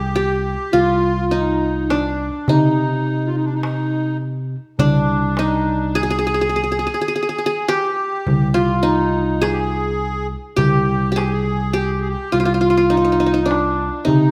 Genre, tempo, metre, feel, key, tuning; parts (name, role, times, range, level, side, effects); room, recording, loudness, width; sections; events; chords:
Arabic maqam ensemble; 104 BPM (eighths); 10/8; straight; C minor; A4 = 440 Hz
qanun; melody; 0.0-14.3 s; D4 to Ab4; -21 LUFS; equal
accordion; second line; 0.0-14.3 s; D4 to Ab4; -26 LUFS; equal; light tremolo tuning
overdriven tine electric piano; bass; 0.0-14.3 s; C2 to C3; -24 LUFS; equal
darbuka; percussion; 0.7-14.3 s; -23 LUFS; equal
moderate recital hall reverb, RT60 1.6 s; -19 LUFS; mono
0.0-14.3 A section